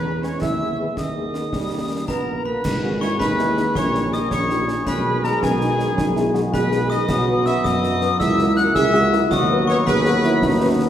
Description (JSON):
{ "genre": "military-style march for wind band", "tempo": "108 BPM (dotted quarters)", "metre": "6/8", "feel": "straight", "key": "G# minor", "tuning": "A4 = 435 Hz", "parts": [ { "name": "dark trumpet section", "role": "melody", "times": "0.0-10.8 s", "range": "G#4 to F#5", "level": "-26 LUFS", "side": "equal", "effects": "none" }, { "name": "bright wooden piccolo", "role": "second line", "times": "0.0-10.8 s", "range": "G#5 to F#6", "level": "-27 LUFS", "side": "left 2 dB", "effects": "none" }, { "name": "warm euphonium", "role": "second line", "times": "0.0-10.9 s", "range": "A#3 to G#4", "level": "-25 LUFS", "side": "right 2 dB", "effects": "none" }, { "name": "dark tuba", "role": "bass", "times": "0.0-10.9 s", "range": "G#1 to F#2", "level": "-23 LUFS", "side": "equal", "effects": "none" }, { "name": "warm French horn section", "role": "accompaniment", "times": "0.1-10.9 s", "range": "F#3 to B4", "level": "-29 LUFS", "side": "left 3 dB", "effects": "none" }, { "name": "dark trombone section", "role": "sustained chords", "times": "0.2-10.9 s", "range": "D#3 to C#4", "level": "-27 LUFS", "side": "right 1 dB", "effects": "none" }, { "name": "concert snare drum, concert bass drum and clash cymbals", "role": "drums", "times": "0.2-10.9 s", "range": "none", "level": "-27 LUFS", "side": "equal", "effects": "none" }, { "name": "glockenspiel with brass mallets", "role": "second line", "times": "2.1-10.8 s", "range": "G#5 to F#6", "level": "-26 LUFS", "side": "left 4 dB", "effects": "none" } ], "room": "wet recital hall reverb, RT60 1.7 s", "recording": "recorded in a church or concert hall", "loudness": "-17 LUFS", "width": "side -10 dB against mid", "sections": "0.0-2.6 A section; 2.6-10.9 B section", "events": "none", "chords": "0.4 G#m/D#; 1.5 D#; 2.6 G#m; 3.8 D#7/A#; 4.9 G#m/B; 7.1 B; 8.2 F#7/C#; 9.3 B/D#", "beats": "| 0.42 0.97 | 1.53 2.09 | 2.64 3.20 | 3.75 4.31 | 4.87 5.42 | 5.98 6.53 | 7.09 7.64 | 8.20 8.76 | 9.31 9.87 | 10.42" }